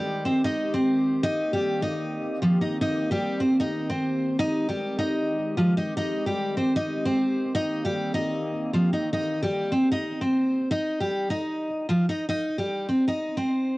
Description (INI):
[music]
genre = hip hop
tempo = 152 BPM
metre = 4/4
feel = half-time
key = C minor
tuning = A4 = 441 Hz
[part]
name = picked steel-string acoustic guitar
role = melody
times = 0.0-13.8 s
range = F3 to Eb5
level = -24 LUFS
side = equal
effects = low-pass filter, cassette tape, analog delay
[part]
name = hollow soft pad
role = sustained chords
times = 0.0-10.7 s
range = Eb3 to G4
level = -31 LUFS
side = equal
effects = chorus, cassette tape
[sound]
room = light reverb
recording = home recording on cassette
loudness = -23 LUFS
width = side -20 dB against mid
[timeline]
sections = 0.0-10.7 A section; 10.7-13.8 B section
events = none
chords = 0.0 Abmaj7; 1.2 Cm7; 4.4 Abmaj7; 7.5 Cm7; 10.7 Cm